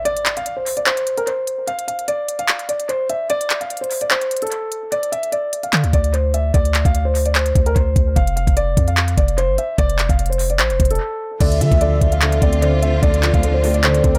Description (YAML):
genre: hip hop, trap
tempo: 148 BPM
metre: 4/4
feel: half-time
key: D minor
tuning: A4 = 440 Hz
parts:
  - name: dark baby grand piano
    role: melody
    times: 0.0-14.2 s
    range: A4 to F5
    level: -24 LUFS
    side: equal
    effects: analog delay
  - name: trap drum kit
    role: drums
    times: 0.1-14.2 s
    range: crash cymbal, handclaps, hi-hat, kick drum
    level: -21 LUFS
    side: equal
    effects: none
  - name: long sustained 808-style bass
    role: bass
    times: 5.7-14.2 s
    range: F1 to D3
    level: -21 LUFS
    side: equal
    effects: none
  - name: warm velvety synth lead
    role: second line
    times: 11.4-14.2 s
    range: C5 to E5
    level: -26 LUFS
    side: equal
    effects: chorus, analog delay
  - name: felt-muted upright piano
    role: accompaniment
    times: 11.4-14.2 s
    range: D3 to C4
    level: -23 LUFS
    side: equal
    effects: none
  - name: warm symphonic string section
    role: sustained chords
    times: 11.4-14.2 s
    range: D3 to F4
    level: -29 LUFS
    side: equal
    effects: none
room: little or no reverb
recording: echo-heavy mix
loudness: -18 LUFS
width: mono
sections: 0.0-11.4 A section; 11.4-14.2 B section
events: break 0.0-4.9, 11.0-11.4; kick muted 4.9-5.7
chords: 0.0 N.C.; 4.9 D7(no3); 8.2 N.C.; 11.4 Dm7